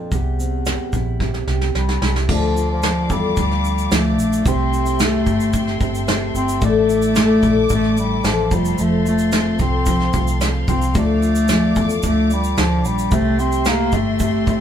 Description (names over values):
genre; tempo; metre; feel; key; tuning
acoustic pop; 111 BPM; 4/4; straight; D minor; A4 = 439 Hz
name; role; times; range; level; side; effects
warm bass clarinet; melody; 0.0-14.6 s; E2 to C4; -20 LUFS; left 2 dB; none
fingerpicked steel-string acoustic guitar; accompaniment; 0.0-14.6 s; A2 to Bb4; -23 LUFS; equal; none
vintage muted fingered electric bass; bass; 0.1-14.6 s; F1 to E2; -22 LUFS; right 1 dB; none
soft brush drum kit; drums; 0.1-14.6 s; crash cymbal, kick drum, shaker, snare drum; -22 LUFS; right 1 dB; none
felt-muted upright piano; accompaniment; 2.3-14.6 s; A3 to D5; -32 LUFS; left 5 dB; none
warm studio string section; sustained chords; 2.3-14.6 s; A4 to D6; -29 LUFS; left 1 dB; none
room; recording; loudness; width
moderate studio reverb, RT60 0.9 s; band playing live in one room; -15 LUFS; side -9 dB against mid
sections
0.0-2.3 A section; 2.3-14.6 B section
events
drum fill 1.2-2.3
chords
0.1 C; 2.3 Dm; 4.5 C6; 6.6 Asus4; 8.5 F; 11.0 Dm; 13.1 C6